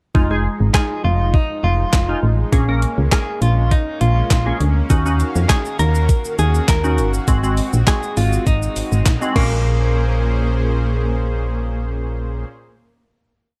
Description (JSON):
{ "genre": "dance-pop", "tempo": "101 BPM", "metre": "4/4", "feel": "straight", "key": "Bb minor", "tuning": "A4 = 439 Hz", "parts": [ { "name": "glassy wavetable pluck", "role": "accompaniment", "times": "0.1-12.5 s", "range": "Ab3 to Bb4", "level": "-26 LUFS", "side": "equal", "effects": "chorus" }, { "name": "solid FM bass", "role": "bass", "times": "0.1-12.4 s", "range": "F1 to F2", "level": "-20 LUFS", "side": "equal", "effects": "sidechain pumping" }, { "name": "crisp 8-bit digital drum machine", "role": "drums", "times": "0.1-9.5 s", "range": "crash cymbal, handclaps, hi-hat, kick drum, shaker, snare drum", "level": "-20 LUFS", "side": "equal", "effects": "overdrive" }, { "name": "soft supersaw", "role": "sustained chords", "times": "0.2-12.4 s", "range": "Bb2 to F5", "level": "-30 LUFS", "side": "equal", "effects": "sidechain pumping" }, { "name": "direct-recorded clean electric guitar", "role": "melody", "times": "0.7-12.4 s", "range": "Bb3 to Bb4", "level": "-26 LUFS", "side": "equal", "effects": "harmonic tremolo, tape echo" } ], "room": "light reverb", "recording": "none", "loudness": "-18 LUFS", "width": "mono", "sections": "0.1-9.7 pre-chorus; 9.7-12.0 final hit", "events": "none", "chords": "0.1 Fm7; 2.5 Bbm7; 4.9 Ebm7; 7.3 Ab7; 9.4 Bbm7", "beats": "| 0.15 0.74 1.34 1.93 | 2.53 3.12 3.71 4.31 | 4.90 5.50 6.09 6.68 | 7.28 7.87 8.47 9.06 | 9.65 10.25 10.84 11.44" }